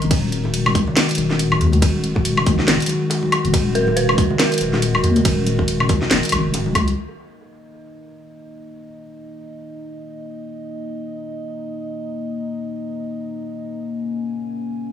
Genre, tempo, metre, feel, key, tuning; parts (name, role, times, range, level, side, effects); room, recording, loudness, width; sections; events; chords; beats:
deep dubstep; 140 BPM; 4/4; swing 58% on 16ths, half-time; Eb minor; A4 = 440 Hz
dark analog pad; sustained chords; 0.0-14.9 s; Eb3 to Ab5; -24 LUFS; left 2 dB; chorus
deep soft wobble bass; bass; 0.0-7.0 s; Eb1 to Eb2; -20 LUFS; left 1 dB; chorus
garage drum kit; drums; 0.0-6.9 s; hi-hat, ride cymbal, snare drum, woodblock; -20 LUFS; equal; low-pass filter on hats, low-pass filter on perc, low-pass filter on snare, low-pass filter on cymbals, low-pass filter on room
electronic kick drum; drums; 0.1-6.8 s; -19 LUFS; equal
congas and bongos; percussion; 0.1-6.9 s; -27 LUFS; left 2 dB; dub echo
dark detuned synth bell; melody; 3.8-6.5 s; Bb4 to Cb5; -25 LUFS; right 4 dB; chorus, dub echo
light reverb; small room ambience; -17 LUFS; side -9 dB against mid
0.0-7.0 A section; 7.0-14.9 B section
drop 0.0-7.0; filter sweep on analog synth pad 7.0-14.9
0.0 Eb5
| 0.11 0.54 0.96 1.39 | 1.82 2.25 2.68 3.11 | 3.54 3.96 4.39 4.82 | 5.25 5.68 6.11 6.54 | 6.96 7.39 7.82 8.25 | 8.68 9.11 9.54 9.96 | 10.39 10.82 11.25 11.68 | 12.11 12.54 12.96 13.39 | 13.82 14.25 14.68